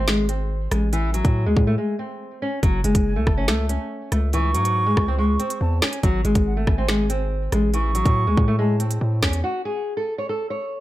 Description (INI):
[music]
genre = hip hop, drill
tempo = 141 BPM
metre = 4/4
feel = half-time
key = unclear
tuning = A4 = 441 Hz
[part]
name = nylon-string guitar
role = melody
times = 0.0-10.8 s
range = E3 to C#5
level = -24 LUFS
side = left 1 dB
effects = low-pass filter
[part]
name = distorted 808-style bass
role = bass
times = 0.0-9.4 s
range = F#1 to A2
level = -22 LUFS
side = equal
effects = distortion
[part]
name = drill drum kit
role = drums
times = 0.1-9.4 s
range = finger snaps, hi-hat, kick drum, rim click, snare drum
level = -22 LUFS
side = equal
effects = none
[part]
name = mellow jazz flute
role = second line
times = 3.1-9.0 s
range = F#5 to C#6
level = -27 LUFS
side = right 3 dB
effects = digital delay
[sound]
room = little or no reverb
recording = none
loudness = -19 LUFS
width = side -15 dB against mid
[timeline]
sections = 0.0-9.4 A section; 9.4-10.8 B section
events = break 1.8-2.6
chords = 0.0 G#; 0.9 N.C.; 2.6 F#m; 4.3 C#m; 6.0 G#; 7.7 A; 9.4 N.C.